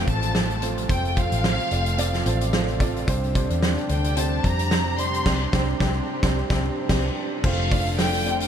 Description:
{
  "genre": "piano-driven pop",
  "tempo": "110 BPM",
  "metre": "4/4",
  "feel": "swing 56% on 16ths",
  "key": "F major",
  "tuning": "A4 = 440 Hz",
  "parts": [
    { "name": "warm studio violin section", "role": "melody", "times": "0.0-8.5 s", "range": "F5 to C6", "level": "-29 LUFS", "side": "left 1 dB", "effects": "tape echo" },
    { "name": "dark upright piano", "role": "accompaniment", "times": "0.0-8.5 s", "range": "C3 to D5", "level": "-29 LUFS", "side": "right 6 dB", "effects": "none" },
    { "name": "warm analog pad", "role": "sustained chords", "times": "0.0-8.5 s", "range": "C3 to G4", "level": "-33 LUFS", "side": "left 1 dB", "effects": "chorus" },
    { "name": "vintage muted fingered electric bass", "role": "bass", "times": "0.0-8.5 s", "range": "F1 to F2", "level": "-25 LUFS", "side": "equal", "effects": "none" },
    { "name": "downlifter", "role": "sound effects", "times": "0.0-3.1 s", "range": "none", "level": "-39 LUFS", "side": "left 1 dB", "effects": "none" },
    { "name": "loose indie drum kit", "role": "drums", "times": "0.1-8.5 s", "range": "crash cymbal, hi-hat, kick drum, snare drum", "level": "-25 LUFS", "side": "equal", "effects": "none" },
    { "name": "dark French horn section", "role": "second line", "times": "3.1-8.5 s", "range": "C3 to D4", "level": "-32 LUFS", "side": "left 5 dB", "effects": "tape echo" }
  ],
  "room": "light reverb, small room ambience",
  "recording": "none",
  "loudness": "-20 LUFS",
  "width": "side -8 dB against mid",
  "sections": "0.0-7.4 A section; 7.4-8.5 B section",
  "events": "band accent 5.3-7.4",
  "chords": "0.0 F; 3.1 Csus2; 7.4 F",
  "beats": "0.35 | 0.90 1.44 1.99 2.53 | 3.08 3.62 4.17 4.71 | 5.26 5.80 6.35 6.89 | 7.44 7.98"
}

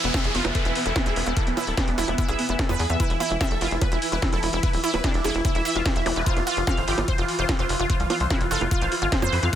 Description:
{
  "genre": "psychedelic trance",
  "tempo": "147 BPM",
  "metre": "4/4",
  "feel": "straight",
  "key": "unclear",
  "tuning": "A4 = 441 Hz",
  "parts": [
    { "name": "dense compressed supersaw", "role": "melody", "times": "0.0-9.6 s", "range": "B3 to C5", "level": "-29 LUFS", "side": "equal", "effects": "phaser, cassette tape, sidechain pumping, dub echo" },
    { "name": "overtone-sweeping drone", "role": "sustained chords", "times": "0.0-9.6 s", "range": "E3", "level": "-32 LUFS", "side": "right 2 dB", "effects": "chorus, built-in reverb, vintage 12-bit sampler grit, sidechain pumping" },
    { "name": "tight sequencer bass", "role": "bass", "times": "0.0-9.5 s", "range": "D1 to F2", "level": "-27 LUFS", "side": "equal", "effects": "none" },
    { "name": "techno drum kit", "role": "drums", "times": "0.0-9.6 s", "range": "bongos, hi-hat, snare drum", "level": "-29 LUFS", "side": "right 1 dB", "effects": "none" },
    { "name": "downlifter and zap", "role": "sound effects", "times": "0.0-3.0, 6.1-6.2 s", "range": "none", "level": "-31 LUFS", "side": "equal", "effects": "none" },
    { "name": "wide unison pluck", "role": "riff", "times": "0.1-9.6 s", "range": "D4 to F5", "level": "-28 LUFS", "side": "right 2 dB", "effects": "auto-pan, sidechain pumping, dub echo" },
    { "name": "electronic kick drum", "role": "drums", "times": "0.1-9.6 s", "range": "none", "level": "-24 LUFS", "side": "equal", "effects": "overdrive" }
  ],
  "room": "digital ambience",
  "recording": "none",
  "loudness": "-21 LUFS",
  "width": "side -10 dB against mid",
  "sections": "0.0-9.6 A section",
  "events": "none",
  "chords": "0.0 E5; 6.3 F5",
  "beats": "0.14 0.55 0.96 | 1.37 1.77 2.18 2.59 | 3.00 3.41 3.81 4.22 | 4.63 5.04 5.45 5.86 | 6.26 6.67 7.08 7.49 | 7.90 8.30 8.71 9.12 | 9.53"
}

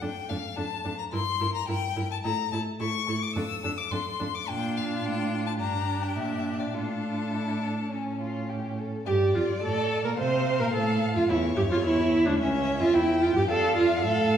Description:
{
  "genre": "quick classical-period movement for string quartet",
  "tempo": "108 BPM",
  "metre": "4/4",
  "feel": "straight",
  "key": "D minor",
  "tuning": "A4 = 440 Hz",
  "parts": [
    { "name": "rich violin", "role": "melody", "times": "0.0-14.4 s", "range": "C#4 to E6", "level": "-33 LUFS", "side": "left 8 dB", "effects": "none" },
    { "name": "rich violin", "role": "second line", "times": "0.0-14.4 s", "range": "C#4 to G5", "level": "-34 LUFS", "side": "left 3 dB", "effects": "none" },
    { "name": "rich viola", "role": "accompaniment", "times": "0.0-14.4 s", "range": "C#4 to C5", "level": "-27 LUFS", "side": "right 2 dB", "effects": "none" },
    { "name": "rich cello", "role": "bass", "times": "0.0-14.4 s", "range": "C#2 to C3", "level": "-30 LUFS", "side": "right 2 dB", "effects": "none" }
  ],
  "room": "wet recital hall reverb, RT60 1.3 s",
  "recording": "recorded in a church or concert hall",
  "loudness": "-24 LUFS",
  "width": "side -9 dB against mid",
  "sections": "0.0-9.1 A section; 9.1-14.4 B section",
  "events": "none",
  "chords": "0.0 Dm/F; 1.1 Edim/G; 2.2 A5; 3.4 Dm/F; 4.5 Bb; 5.6 Gm; 6.7 Dm/A; 7.9 A; 9.1 Dm; 11.3 C#dim; 13.5 Dm/F",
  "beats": "| 0.03 0.58 1.13 1.69 | 2.24 2.80 3.36 3.92 | 4.49 5.04 5.60 6.16 | 6.74 7.33 7.91 8.49 | 9.07 9.63 10.19 10.74 | 11.29 11.84 12.39 12.94 | 13.49 14.04"
}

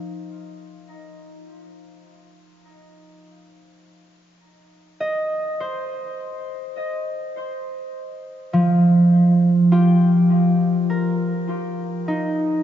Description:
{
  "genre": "ambient",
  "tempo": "51 BPM",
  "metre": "4/4",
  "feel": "straight",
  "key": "unclear",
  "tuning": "A4 = 441 Hz",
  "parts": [
    { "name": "concert harp", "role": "solo", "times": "0.0-12.6 s", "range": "F3 to Eb5", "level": "-18 LUFS", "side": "equal", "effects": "diffuse ambient delay" }
  ],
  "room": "wet cathedral reverb, RT60 6.5 s",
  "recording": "nothing above 7.5 kHz",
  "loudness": "-17 LUFS",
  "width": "side -10 dB against mid",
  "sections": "0.0-12.6 A section",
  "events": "none",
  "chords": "0.0 N.C.; 2.7 Eb; 12.1 N.C.",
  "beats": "0.31 1.48 | 2.66 3.84 5.01 6.19 | 7.37 8.54 9.72 10.89 | 12.07"
}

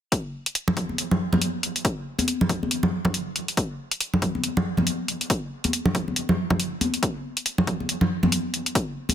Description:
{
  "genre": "dubstep",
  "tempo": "139 BPM",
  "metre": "4/4",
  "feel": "swing 58% on 16ths, half-time",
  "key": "none",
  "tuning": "none",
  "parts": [
    { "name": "electronic hi-hat", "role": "drums", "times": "0.1-9.1 s", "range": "none", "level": "-26 LUFS", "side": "left 1 dB", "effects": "overdrive" },
    { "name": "electronic kick drum", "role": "drums", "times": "0.1-8.9 s", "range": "none", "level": "-27 LUFS", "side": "left 1 dB", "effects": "overdrive, high-pass filter on kick" },
    { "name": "congas", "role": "percussion", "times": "0.7-9.1 s", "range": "none", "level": "-24 LUFS", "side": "equal", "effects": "dub echo" }
  ],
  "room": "light reverb",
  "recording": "dense, heavily limited modern master",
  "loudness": "-22 LUFS",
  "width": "side -10 dB against mid",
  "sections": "0.1-9.1 A section",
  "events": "none",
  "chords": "none",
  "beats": "| 0.12 0.55 0.98 1.42 | 1.85 2.28 2.71 3.14 | 3.58 4.01 4.44 4.87 | 5.30 5.73 6.17 6.60 | 7.03 7.46 7.89 8.32 | 8.76"
}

